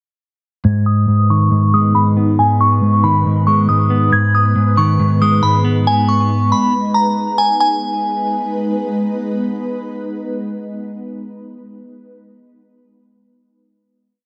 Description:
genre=hip hop, drill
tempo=138 BPM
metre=4/4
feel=half-time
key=G# minor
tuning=A4 = 440 Hz
part: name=glassy synth bell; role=melody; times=0.6-8.9 s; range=G#5 to G#6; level=-19 LUFS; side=equal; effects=chorus, phaser, low-pass filter, tape echo
part: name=clean electric guitar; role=accompaniment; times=0.6-6.7 s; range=G#2 to B3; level=-16 LUFS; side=equal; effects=low-pass filter
part: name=ethereal airy pad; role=sustained chords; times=1.2-11.8 s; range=G#3 to B4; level=-24 LUFS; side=equal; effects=ensemble chorus, built-in reverb, phaser, low-pass filter
room=light reverb, digital ambience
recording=none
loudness=-15 LUFS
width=mono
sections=0.6-7.6 breakdown; 7.6-11.1 final chord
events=filter sweep 0.6-7.6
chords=0.6 G#m

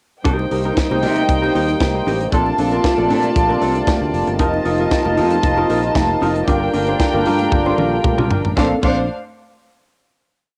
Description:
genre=disco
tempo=115 BPM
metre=4/4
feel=straight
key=Bb major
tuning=A4 = 440 Hz
part: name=dark studio string section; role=second line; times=0.2-9.1 s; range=D4 to A5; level=-22 LUFS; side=equal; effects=cassette tape
part: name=mellow electric guitar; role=accompaniment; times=0.2-9.0 s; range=C4 to C5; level=-25 LUFS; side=equal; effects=cassette tape
part: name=dark French horn section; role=sustained chords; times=0.2-8.8 s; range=C3 to A4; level=-24 LUFS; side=equal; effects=cassette tape
part: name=fingered electric bass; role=bass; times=0.3-9.1 s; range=F1 to C3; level=-26 LUFS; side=equal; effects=none
part: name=tight funk drum kit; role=drums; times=0.3-9.0 s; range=crash cymbal, hi-hat, kick drum, snare drum, toms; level=-23 LUFS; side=equal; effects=cassette tape
part: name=congas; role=percussion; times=0.3-9.1 s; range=none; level=-32 LUFS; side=equal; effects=none
room=light reverb, small room ambience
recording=home recording on cassette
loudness=-17 LUFS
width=mono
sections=0.3-8.6 pre-chorus; 8.6-10.6 final chord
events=drum fill 7.5-8.6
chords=0.3 Cm7; 2.3 Bbmaj9; 4.4 F7sus4; 6.5 Gm7; 8.6 Bbmaj9

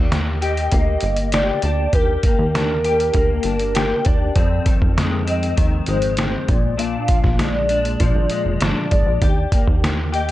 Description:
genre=indie pop, bedroom pop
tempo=99 BPM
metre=4/4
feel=straight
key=Eb major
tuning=A4 = 440 Hz
part: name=hollow clarinet-like synth lead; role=melody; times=0.0-10.3 s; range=Bb4 to F5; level=-23 LUFS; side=equal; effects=ensemble chorus, tape echo
part: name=clean electric guitar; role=accompaniment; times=0.0-10.3 s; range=F2 to G4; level=-24 LUFS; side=left 4 dB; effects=ensemble chorus, warbly pitch drift
part: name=plucky analog bass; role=bass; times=0.0-10.3 s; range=F1 to F2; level=-22 LUFS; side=equal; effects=none
part: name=trip hop sampler-style drum kit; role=drums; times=0.1-10.3 s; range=hi-hat, kick drum, snare drum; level=-19 LUFS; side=equal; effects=none
room=little or no reverb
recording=none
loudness=-16 LUFS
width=side -15 dB against mid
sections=0.0-10.3 A section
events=none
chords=0.0 Ebmaj7; 4.4 Fm7; 6.5 Bb7; 9.2 Ebmaj7

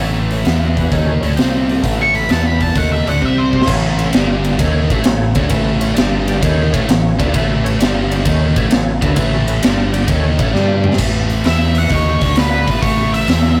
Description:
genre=blues rock power trio and southern rock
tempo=131 BPM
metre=4/4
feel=swing 68% on 8ths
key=A mixolydian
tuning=A4 = 439 Hz
part: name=overdriven tonewheel organ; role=sustained chords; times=0.0-10.9 s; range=E3 to F#5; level=-27 LUFS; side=equal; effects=slow rotary speaker, chorus vibrato
part: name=biting overdriven guitar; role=riff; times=0.0-13.6 s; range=G2 to G4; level=-21 LUFS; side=equal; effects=none
part: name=growling fingered electric bass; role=bass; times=0.0-13.6 s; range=G1 to G2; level=-20 LUFS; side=equal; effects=overdrive
part: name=big rock drum kit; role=drums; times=0.0-13.4 s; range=crash cymbal, hi-hat, kick drum, ride cymbal, snare drum, toms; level=-19 LUFS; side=equal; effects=none
part: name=octave-fuzz lead guitar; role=melody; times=2.0-3.7, 11.5-13.6 s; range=B4 to C#6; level=-21 LUFS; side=equal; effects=distortion, analog delay
room=wet booth ambience, RT60 0.2 s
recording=rough rehearsal-room recording, warm saturation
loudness=-15 LUFS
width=mono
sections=0.0-3.7 A section; 3.7-11.0 B section; 11.0-13.6 C section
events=drum fill 3.2-3.7, 10.5-11.0; lead electric guitar solo 11.0-13.6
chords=0.5 E5; 0.9 A; 1.4 C5; 1.8 A; 2.3 E5; 2.8 A; 3.2 C5; 3.7 A; 4.1 G5; 4.6 A; 6.0 G5; 6.4 A; 7.8 G5; 8.3 A; 9.6 G5; 10.1 A; 10.5 G5; 11.0 A5; 11.5 E5; 11.9 Bbmadd11/Eb; 12.1 D5; 12.6 A

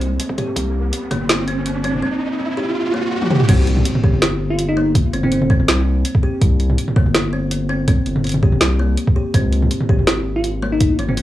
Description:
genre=half-time drum and bass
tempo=164 BPM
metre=4/4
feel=swing 54% on 16ths, half-time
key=C phrygian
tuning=A4 = 440 Hz
part: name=kalimba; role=arpeggios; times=0.0-11.2 s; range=Bb3 to G4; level=-23 LUFS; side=left 1 dB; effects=analog delay
part: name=saturated sub bass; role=bass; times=0.0-11.2 s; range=G1 to Db2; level=-20 LUFS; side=left 1 dB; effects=none
part: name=drum and bass drum kit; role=drums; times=0.0-11.2 s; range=crash cymbal, hi-hat, snare drum, toms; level=-19 LUFS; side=right 1 dB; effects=none
part: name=riser and impact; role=sound effects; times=0.1-5.0 s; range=none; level=-24 LUFS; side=right 1 dB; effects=none
part: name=electronic kick drum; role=drums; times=0.3-1.2, 3.5-10.9 s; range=none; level=-15 LUFS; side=equal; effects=overdrive, high-pass filter on kick
part: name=bell-like FM electric piano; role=melody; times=4.5-5.5, 10.4-11.2 s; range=C4 to F4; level=-22 LUFS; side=equal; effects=chorus, low-pass filter, analog delay
room=little or no reverb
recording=dry, gritty hardware recording, small room reverb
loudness=-15 LUFS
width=side -14 dB against mid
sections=0.0-3.5 A section; 3.5-11.2 B section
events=build-up 0.0-3.5; riser 0.1-3.5; drum fill 3.2; drop 3.5-11.2; impact 3.5-5.0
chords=0.0 C5; 9.3 Db5

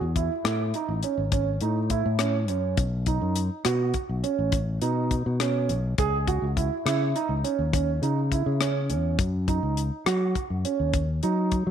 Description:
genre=progressive instrumental, band music in an uneven meter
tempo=206 BPM (eighths)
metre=11/8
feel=straight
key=unclear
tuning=A4 = 441 Hz
part: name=warm concert grand piano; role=arpeggios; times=0.0-11.5 s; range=C#4 to G#4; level=-28 LUFS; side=right 8 dB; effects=none
part: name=fingered electric bass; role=bass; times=0.0-11.7 s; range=G#1 to F#3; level=-26 LUFS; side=left 1 dB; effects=none
part: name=tight funk drum kit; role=drums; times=0.2-11.7 s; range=hi-hat, kick drum, rim click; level=-28 LUFS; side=left 4 dB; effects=none
room=moderate plate reverb, RT60 1.5 s, small room ambience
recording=1960s-style stereo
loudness=-23 LUFS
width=side -9 dB against mid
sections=0.0-11.7 A section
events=none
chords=0.0 Amaj7; 2.8 B7; 6.0 N.C.; 9.2 F#5

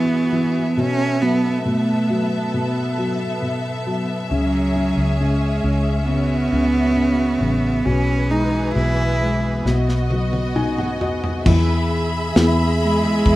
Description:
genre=pop ballad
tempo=68 BPM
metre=4/4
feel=straight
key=E major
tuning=A4 = 442 Hz
part: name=warm cello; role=melody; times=0.0-13.4 s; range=F#3 to E4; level=-20 LUFS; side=right 2 dB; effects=none
part: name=felt-muted upright piano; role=accompaniment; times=0.0-13.4 s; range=B2 to G#5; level=-22 LUFS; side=left 2 dB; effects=none
part: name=rich studio string section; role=sustained chords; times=0.0-13.4 s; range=E3 to B5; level=-25 LUFS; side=equal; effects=none
part: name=vintage muted fingered electric bass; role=bass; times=4.3-13.4 s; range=A1 to E2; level=-22 LUFS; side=equal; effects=none
part: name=modern studio drum kit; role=drums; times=9.7-13.4 s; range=crash cymbal, kick drum, snare drum, toms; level=-22 LUFS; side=equal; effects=none
room=small room reverb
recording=rough home demo mix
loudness=-17 LUFS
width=side -16 dB against mid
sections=0.0-11.5 A section; 11.5-13.4 B section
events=drum fill 9.6-11.5; felt piano fill 10.1-11.5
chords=0.0 Eadd9; 0.8 B7sus4; 4.3 C#m; 7.9 E/B; 9.6 B; 11.5 E

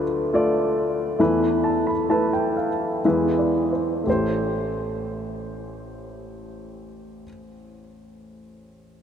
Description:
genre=folk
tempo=57-72 BPM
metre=3/4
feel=straight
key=A minor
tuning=A4 = 440 Hz
part: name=warm grand piano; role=accompaniment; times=0.0-9.0 s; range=A1 to B5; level=-21 LUFS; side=equal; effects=none
room=wet huge ambient reverb, RT60 4.1 s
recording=dreamy mix soaked in reverb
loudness=-20 LUFS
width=side -8 dB against mid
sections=0.0-4.1 A section; 4.1-7.2 B section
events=slowing down 0.0-4.1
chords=0.0 Dm; 1.2 Esus4; 3.0 E; 4.1 Am7

